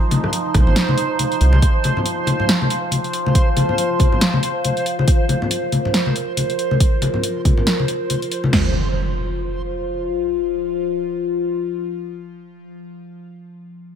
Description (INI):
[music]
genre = deep dubstep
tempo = 139 BPM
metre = 4/4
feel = swing 58% on 16ths, half-time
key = unclear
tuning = A4 = 440 Hz
[part]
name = overtone-sweeping drone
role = sustained chords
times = 0.0-12.8 s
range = F3 to Bb4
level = -23 LUFS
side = left 1 dB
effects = chorus, built-in reverb
[part]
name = backwards swelling texture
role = texture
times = 0.0-8.5 s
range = C5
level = -26 LUFS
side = right 2 dB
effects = built-in reverb
[part]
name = deep house drum kit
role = drums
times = 0.1-8.4 s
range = hi-hat, rim click, snare drum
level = -21 LUFS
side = equal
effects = overdrive
[part]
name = bongos and congas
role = percussion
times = 0.1-8.5 s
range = none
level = -22 LUFS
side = left 2 dB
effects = none
[part]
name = saturated sub bass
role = bass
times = 0.5-1.6 s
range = Ab1 to C2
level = -14 LUFS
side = equal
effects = tube saturation
[part]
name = deep house drum kit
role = drums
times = 0.5-8.6 s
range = crash cymbal, kick drum, snare drum, toms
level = -16 LUFS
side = right 1 dB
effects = overdrive
[part]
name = impact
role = sound effects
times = 8.5-13.2 s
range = none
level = -24 LUFS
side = right 1 dB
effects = none
[sound]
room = light reverb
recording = none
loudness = -16 LUFS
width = side -8 dB against mid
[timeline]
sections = 0.0-8.5 A section; 8.5-12.0 B section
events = none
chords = 0.0 F5; 8.5 N.C.